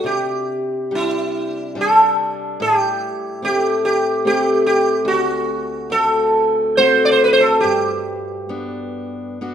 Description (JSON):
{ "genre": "celtic folk, Celtic slow air", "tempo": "71 BPM", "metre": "3/4", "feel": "uneven beats, rubato", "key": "unclear", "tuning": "A4 = 440 Hz", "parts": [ { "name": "sitar", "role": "melody", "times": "0.0-9.4 s", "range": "E4 to D5", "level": "-17 LUFS", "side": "right 2 dB", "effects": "none" }, { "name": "picked steel-string acoustic guitar", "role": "accompaniment", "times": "0.0-9.5 s", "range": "D2 to G4", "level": "-20 LUFS", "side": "left 2 dB", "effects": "none" } ], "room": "light reverb", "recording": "minimal, uncompressed stereo recording", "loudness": "-15 LUFS", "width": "side -9 dB against mid", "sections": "0.0-9.5 A section", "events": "none", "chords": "0.0 Cadd9; 2.6 Am7; 5.1 D7; 7.6 Gmaj7" }